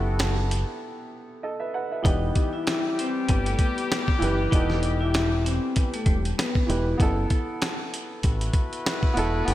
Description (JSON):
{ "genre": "hip hop, boom-bap hip-hop", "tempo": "97 BPM", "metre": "4/4", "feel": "swing 54% on 16ths", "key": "E harmonic minor", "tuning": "A4 = 437 Hz", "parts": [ { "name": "warm upright piano", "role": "accompaniment", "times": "0.0-9.5 s", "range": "E3 to F#5", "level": "-30 LUFS", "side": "right 2 dB", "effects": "cassette tape, high-pass filter, low-pass filter" }, { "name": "clear trumpet section", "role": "stabs", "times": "0.0-9.5 s", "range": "G3 to B4", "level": "-33 LUFS", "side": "left 4 dB", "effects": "high-pass filter, low-pass filter, analog delay" }, { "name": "deep dub fingered electric bass", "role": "bass", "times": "0.0-9.5 s", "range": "E1 to A1", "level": "-25 LUFS", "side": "equal", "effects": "none" }, { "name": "dusty soul sampler-style drum kit", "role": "drums", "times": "0.2-9.5 s", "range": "hi-hat, kick drum, snare drum", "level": "-25 LUFS", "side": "equal", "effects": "none" }, { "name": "vibraphone with hard mallets", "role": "melody", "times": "2.0-6.7 s", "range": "G3 to E5", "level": "-29 LUFS", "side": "left 3 dB", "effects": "high-pass filter, low-pass filter, analog delay" } ], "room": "light reverb", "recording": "none", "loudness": "-22 LUFS", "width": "side -14 dB against mid", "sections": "0.0-9.5 A section", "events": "break 0.8-2.1", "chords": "0.0 B7sus4; 2.1 Em; 7.0 B7sus4" }